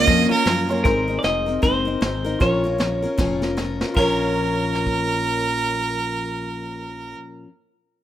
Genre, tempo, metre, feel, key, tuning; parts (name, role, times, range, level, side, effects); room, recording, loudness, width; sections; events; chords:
honky-tonk and classic country; 154 BPM; 4/4; swing 61% on 8ths; Bb minor; A4 = 440 Hz
clean electric guitar; melody; 0.0-7.1 s; Bb3 to Eb5; -24 LUFS; left 1 dB
clear fiddle; second line; 0.0-0.8, 4.0-7.1 s; Bb4 to Eb5; -22 LUFS; right 5 dB
honky-tonk upright piano; accompaniment; 0.0-7.2 s; Db4 to Db5; -31 LUFS; right 4 dB
picked steel-string acoustic guitar; accompaniment; 0.0-7.5 s; Bb2 to Bb4; -25 LUFS; left 4 dB
pedal steel guitar; sustained chords; 0.0-0.8 s; Bb4 to F5; -38 LUFS; right 4 dB
fretless electric bass; bass; 0.0-7.1 s; F1 to Gb2; -28 LUFS; right 1 dB
vintage brush drum kit; drums; 0.1-5.0 s; crash cymbal, hi-hat, kick drum, snare drum; -24 LUFS; right 1 dB
light reverb, small room ambience; rough home demo mix; -19 LUFS; side -12 dB against mid
0.8-4.0 A section; 4.0-7.1 B section
drum fill 3.2-4.0
0.0 Bbm; 0.8 Abadd9; 2.4 Bbm